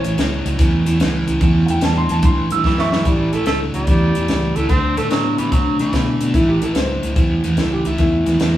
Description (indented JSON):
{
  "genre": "electric blues shuffle",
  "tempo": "146 BPM",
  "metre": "4/4",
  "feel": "swing 67% on 8ths",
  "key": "A mixolydian",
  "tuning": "A4 = 439 Hz",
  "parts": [
    { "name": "dark upright piano", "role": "second line", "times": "0.0-3.1, 6.3-8.6 s", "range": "E4 to E6", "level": "-22 LUFS", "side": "equal", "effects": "none" },
    { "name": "overdriven semi-hollow guitar", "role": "riff", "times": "0.0-8.6 s", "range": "A2 to B3", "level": "-20 LUFS", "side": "equal", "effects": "spring reverb" },
    { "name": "fingered electric bass", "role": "bass", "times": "0.0-8.6 s", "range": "A1 to C3", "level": "-20 LUFS", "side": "right 1 dB", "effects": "none" },
    { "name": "compact cocktail drum kit", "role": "drums", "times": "0.0-8.5 s", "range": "hi-hat, kick drum, snare drum", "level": "-19 LUFS", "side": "equal", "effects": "none" },
    { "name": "warm tenor saxophone", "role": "melody", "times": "2.7-6.3 s", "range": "E3 to C4", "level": "-22 LUFS", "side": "right 1 dB", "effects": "none" }
  ],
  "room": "wet studio reverb, RT60 0.7 s",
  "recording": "band playing live in one room, small room reverb",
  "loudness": "-15 LUFS",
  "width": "side -13 dB against mid",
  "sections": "0.0-3.1 A section; 3.1-8.6 B section",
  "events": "upright piano solo 0.0-3.1; drum fill 2.6-3.1",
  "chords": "0.0 A7; 4.7 Dsus2; 6.3 A",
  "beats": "0.18 0.59 1.00 | 1.42 1.82 2.23 2.65 | 3.06 3.47 3.88 4.29 | 4.70 5.11 5.52 5.94 | 6.35 6.76 7.17 7.58 | 7.99 8.40"
}